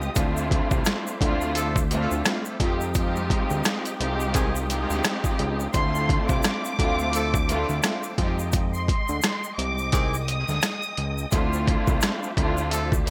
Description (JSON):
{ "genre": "hip hop, boom-bap hip-hop", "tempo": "86 BPM", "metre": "4/4", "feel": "swing 59% on 16ths", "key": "D minor", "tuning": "A4 = 440 Hz", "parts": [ { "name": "dark symphonic violin section", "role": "melody", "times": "0.0-0.1, 5.7-11.3 s", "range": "C6 to Eb6", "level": "-33 LUFS", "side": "equal", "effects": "high-pass filter, low-pass filter, delay" }, { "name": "warm studio string section", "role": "accompaniment", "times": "0.0-13.1 s", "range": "Ab3 to G4", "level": "-30 LUFS", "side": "equal", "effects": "high-pass filter, low-pass filter" }, { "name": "bright tonewheel organ", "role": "sustained chords", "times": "0.0-13.1 s", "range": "Ab3 to Eb6", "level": "-41 LUFS", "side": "equal", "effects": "none" }, { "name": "fat analog bass", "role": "bass", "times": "0.0-13.1 s", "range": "C2 to F2", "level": "-30 LUFS", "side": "equal", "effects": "none" }, { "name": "tube shaker", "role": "percussion", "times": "0.0-13.1 s", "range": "none", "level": "-40 LUFS", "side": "equal", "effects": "none" }, { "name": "boom bap sampler-style drum kit", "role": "drums", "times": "0.2-13.1 s", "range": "hi-hat, kick drum, rim click, snare drum", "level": "-27 LUFS", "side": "equal", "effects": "overdrive" }, { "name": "clear horn section", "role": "stabs", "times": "1.6-12.9 s", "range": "Eb3 to A4", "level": "-36 LUFS", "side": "equal", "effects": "high-pass filter, low-pass filter, delay" } ], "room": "light reverb, studio reverb", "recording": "bright 1980s-style digital production", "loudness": "-24 LUFS", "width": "mono", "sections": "0.0-13.1 A section", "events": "none", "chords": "0.2 Dm9; 2.6 Fm9; 5.7 Dm9; 8.2 Fm9; 11.3 Dm9" }